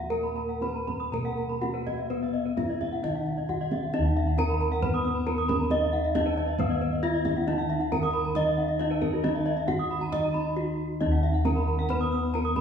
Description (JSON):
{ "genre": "Balinese gamelan", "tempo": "136 BPM", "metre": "4/4", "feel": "straight", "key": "Eb pelog", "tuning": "A4 = 439 Hz", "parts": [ { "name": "gamelan-type bronze metallophone", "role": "melody", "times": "0.0-12.6 s", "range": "Cb4 to Eb5", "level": "-30 LUFS", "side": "equal", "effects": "none" }, { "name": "gamelan-type bronze metallophone", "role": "accompaniment", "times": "0.0-12.6 s", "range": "Eb3 to Eb4", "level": "-35 LUFS", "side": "equal", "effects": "none" }, { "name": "gamelan-type bronze metallophone", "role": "arpeggios", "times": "0.0-12.6 s", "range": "Bb4 to Fb6+35c", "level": "-33 LUFS", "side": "left 3 dB", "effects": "none" }, { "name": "gamelan-type bossed gongs", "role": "bass", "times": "0.0-12.6 s", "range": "Eb2 to Eb5", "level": "-30 LUFS", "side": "equal", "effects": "none" }, { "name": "gamelan-type bronze metallophone", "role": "arpeggios", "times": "0.2-12.6 s", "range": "Gb4 to Eb6", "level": "-35 LUFS", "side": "right 2 dB", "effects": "none" }, { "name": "kendang", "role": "percussion", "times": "0.2-12.6 s", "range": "none", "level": "-34 LUFS", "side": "right 2 dB", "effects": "none" } ], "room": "wet recital hall reverb, RT60 1.7 s", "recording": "recorded in a church or concert hall, small room ambience", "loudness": "-25 LUFS", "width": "side -7 dB against mid", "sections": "0.0-3.9 A section; 3.9-12.6 B section", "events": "break 10.3-11.0", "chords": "none" }